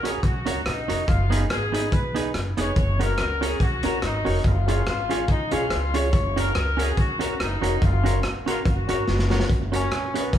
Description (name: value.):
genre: ska.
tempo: 142 BPM.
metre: 4/4.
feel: swing 55% on 8ths.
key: F# major.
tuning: A4 = 440 Hz.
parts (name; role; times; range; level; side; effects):
clear horn section; melody; 0.0-9.3 s; D#4 to C#5; -28 LUFS; left 2 dB; none.
semi-hollow electric guitar; accompaniment; 0.0-10.3 s; B3 to C#5; -28 LUFS; right 4 dB; tape echo.
upright bass; bass; 0.0-10.4 s; E#1 to C#2; -26 LUFS; equal; none.
crunchy breakbeat drum kit; drums; 0.1-10.4 s; hi-hat, kick drum, rim click, snare drum; -25 LUFS; equal; none.
dark upright piano; stabs; 3.0-10.3 s; C#4 to A#4; -31 LUFS; left 3 dB; none.
brilliant trombone; melody; 9.8-10.4 s; B3 to C#4; -27 LUFS; equal; tape echo.
room: wet large studio reverb, RT60 1.4 s.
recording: band playing live in one room.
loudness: -20 LUFS.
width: side -10 dB against mid.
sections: 0.0-9.5 A section.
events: drum fill 9.1-9.5.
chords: 0.0 F#; 1.1 G#m/F#; 2.8 F#; 4.4 C#/F#; 6.1 F#.